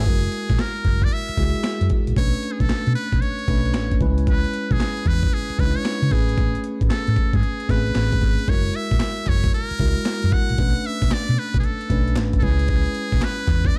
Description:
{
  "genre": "R&B, new jack swing",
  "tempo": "114 BPM",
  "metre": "4/4",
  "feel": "swing 65% on 16ths",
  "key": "unclear",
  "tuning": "A4 = 439 Hz",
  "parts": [
    { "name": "trumpet with metal mute", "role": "melody", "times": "0.0-13.8 s", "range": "G#4 to F#5", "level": "-31 LUFS", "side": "equal", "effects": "none" },
    { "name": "mellow tine electric piano", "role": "accompaniment", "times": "0.0-13.8 s", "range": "G#3 to B4", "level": "-30 LUFS", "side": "equal", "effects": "none" },
    { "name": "hollow-body short-scale fingered electric bass", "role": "bass", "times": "0.0-13.7 s", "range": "F#1 to C#3", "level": "-24 LUFS", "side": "equal", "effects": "none" },
    { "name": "breakbeat sampler-style drum kit", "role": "drums", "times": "0.1-13.8 s", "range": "handclaps, hi-hat, kick drum, snare drum", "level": "-24 LUFS", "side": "equal", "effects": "none" },
    { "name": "group handclap", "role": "percussion", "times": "9.0-13.6 s", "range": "none", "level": "-46 LUFS", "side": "equal", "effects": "none" }
  ],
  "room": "little or no reverb",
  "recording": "dark, warm production",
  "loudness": "-21 LUFS",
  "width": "mono",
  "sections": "0.1-13.8 A section",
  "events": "none",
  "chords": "0.1 F#9; 2.2 Bm9; 4.0 C#m7; 6.1 Amaj9; 8.5 F#9; 10.6 Bm9; 12.4 C#m7",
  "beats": "| 0.06 0.59 1.11 1.64 | 2.17 2.69 3.22 3.75 | 4.27 4.80 5.32 5.85 | 6.38 6.90 7.43 7.96 | 8.48 9.01 9.53 10.06 | 10.59 11.11 11.64 12.17 | 12.69 13.22 13.74"
}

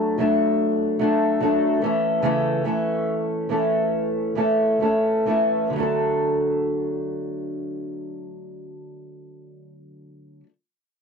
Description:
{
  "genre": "pop",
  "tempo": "64-75 BPM",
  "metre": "4/4",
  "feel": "straight",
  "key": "D major",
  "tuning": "A4 = 442 Hz",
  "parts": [
    { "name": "fingerpicked old ladder-braced acoustic guitar", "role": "accompaniment", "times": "0.0-10.5 s", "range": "C#3 to A4", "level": "-21 LUFS", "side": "equal", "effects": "double-tracked left and right" }
  ],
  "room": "moderate booth ambience, RT60 0.2 s",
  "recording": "dry, close 1970s-style studio recording",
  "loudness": "-20 LUFS",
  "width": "side -5 dB against mid",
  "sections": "0.0-5.7 A section; 5.7-9.5 B section",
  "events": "slowing down 0.0-5.7",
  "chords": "0.0 D; 1.8 A/C#; 5.7 D",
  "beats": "0.59 1.40 | 2.22 3.06 3.93 4.81 | 5.73 6.66 7.59 8.53"
}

